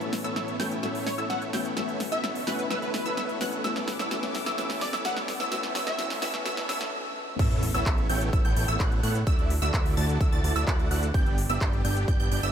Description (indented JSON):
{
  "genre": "EDM, festival progressive house",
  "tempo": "128 BPM",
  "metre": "4/4",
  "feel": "straight",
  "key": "D major",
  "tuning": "A4 = 440 Hz",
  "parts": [
    { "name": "felt-muted upright piano", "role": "accompaniment", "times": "0.0-7.4 s", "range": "A2 to C#4", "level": "-36 LUFS", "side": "left 4 dB", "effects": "sidechain pumping, ping-pong delay" },
    { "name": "dark studio string section", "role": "sustained chords", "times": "0.0-12.5 s", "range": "D2 to D6", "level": "-39 LUFS", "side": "equal", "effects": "sidechain pumping" },
    { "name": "wide unison pluck", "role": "arpeggios", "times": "0.0-12.5 s", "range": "E6 to A6", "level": "-33 LUFS", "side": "right 1 dB", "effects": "phaser, sidechain pumping, ping-pong delay" },
    { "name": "dense compressed supersaw", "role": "riff", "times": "0.0-12.5 s", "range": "A3 to A5", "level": "-33 LUFS", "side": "right 2 dB", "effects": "vintage 12-bit sampler grit, sidechain pumping, ping-pong delay" },
    { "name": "big-room dance drum kit", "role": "drums", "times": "0.0-12.5 s", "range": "crash cymbal, handclaps, hi-hat, snare drum", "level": "-34 LUFS", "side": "equal", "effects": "overdrive, small room ambience" },
    { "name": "riser, swell and sub drop", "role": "sound effects", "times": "3.0-9.3 s", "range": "none", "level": "-39 LUFS", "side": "right 1 dB", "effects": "none" },
    { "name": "plucky unison lead", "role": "melody", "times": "1.1-6.0 s", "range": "B4 to F#5", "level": "-35 LUFS", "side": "left 1 dB", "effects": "ensemble chorus, ping-pong delay" },
    { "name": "fat analog bass", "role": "bass", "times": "7.4-12.5 s", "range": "G1 to A2", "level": "-28 LUFS", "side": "equal", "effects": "tube saturation, sidechain pumping" },
    { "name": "electronic kick drum", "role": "drums", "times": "7.4-12.2 s", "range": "none", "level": "-25 LUFS", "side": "equal", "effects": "small room ambience" }
  ],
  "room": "light reverb, digital ambience",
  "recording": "high-pass filter",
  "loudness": "-24 LUFS",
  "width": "side -9 dB against mid",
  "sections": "0.0-7.4 A section; 7.4-12.5 B section",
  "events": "build-up 0.0-7.4; drum fill 0.0-6.9; filter sweep 0.0-7.4; swell 6.5-7.4; stop 6.9-7.4; drop 7.4-12.5; impact 7.4-9.3",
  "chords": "0.0 Aadd9; 1.8 Dadd9; 3.6 G; 5.5 Dadd9; 7.4 Aadd9; 9.3 Dadd9; 11.1 G"
}